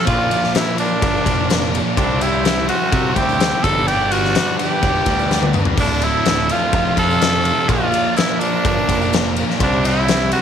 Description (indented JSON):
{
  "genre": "classic rock",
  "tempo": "126 BPM",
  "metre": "4/4",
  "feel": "straight",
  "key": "unclear",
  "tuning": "A4 = 439 Hz",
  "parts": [
    { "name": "raspy tenor saxophone", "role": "melody", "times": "0.0-10.4 s", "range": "D4 to A4", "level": "-20 LUFS", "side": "right 1 dB", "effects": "none" },
    { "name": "octave-fuzz lead guitar", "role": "second line", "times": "0.0-10.4 s", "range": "G4 to F5", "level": "-29 LUFS", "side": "right 12 dB", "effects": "distortion" },
    { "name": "tonewheel organ", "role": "sustained chords", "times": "0.0-10.4 s", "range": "F3 to D5", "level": "-30 LUFS", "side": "right 1 dB", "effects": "none" },
    { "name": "crunchy overdriven guitar", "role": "riff", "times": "0.0-10.4 s", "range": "D2 to C4", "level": "-24 LUFS", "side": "right 2 dB", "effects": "none" },
    { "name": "distorted electric guitar", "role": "riff", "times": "0.0-10.4 s", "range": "D2 to C4", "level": "-24 LUFS", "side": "equal", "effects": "overdrive" },
    { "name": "growling picked electric bass", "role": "bass", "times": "0.1-10.3 s", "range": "D1 to C3", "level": "-23 LUFS", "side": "right 1 dB", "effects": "overdrive" },
    { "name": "huge arena drum kit", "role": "drums", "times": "0.1-10.4 s", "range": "crash cymbal, kick drum, ride cymbal, snare drum, splash cymbal, toms", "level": "-20 LUFS", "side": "left 4 dB", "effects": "none" },
    { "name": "tambourine", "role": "percussion", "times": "0.1-10.4 s", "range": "none", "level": "-36 LUFS", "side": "left 14 dB", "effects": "none" }
  ],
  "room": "light reverb",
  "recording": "1960s-style stereo with parts hard left and right",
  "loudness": "-14 LUFS",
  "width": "side -8 dB against mid",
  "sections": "0.0-10.4 A section",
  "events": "drum fill 5.3-5.8",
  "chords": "0.1 Bb; 2.0 C; 3.6 G; 5.8 D; 6.7 F; 7.7 Bb; 9.6 C",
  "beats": "| 0.08 0.56 1.03 1.50 | 1.98 2.45 2.93 3.40 | 3.88 4.35 4.83 5.30 | 5.78 6.26 6.73 7.21 | 7.69 8.16 8.64 9.12 | 9.60 10.08"
}